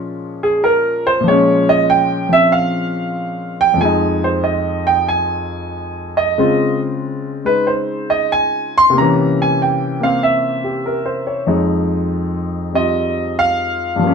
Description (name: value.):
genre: solo jazz.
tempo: 94 BPM.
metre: 4/4.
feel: swing 69% on 8ths, rubato.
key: F minor.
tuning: A4 = 441 Hz.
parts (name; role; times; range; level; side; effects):
warm grand piano; solo; 0.0-14.1 s; F2 to C6; -14 LUFS; equal; none.
room: moderate studio reverb, RT60 0.6 s.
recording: band playing live in one room.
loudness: -14 LUFS.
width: side -6 dB against mid.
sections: 0.0-14.1 A section.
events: grand piano solo 0.0-14.1.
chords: 0.0 Bbm7; 3.8 Fm7; 6.4 Dbmaj7; 9.0 C7b9; 11.5 Fm7.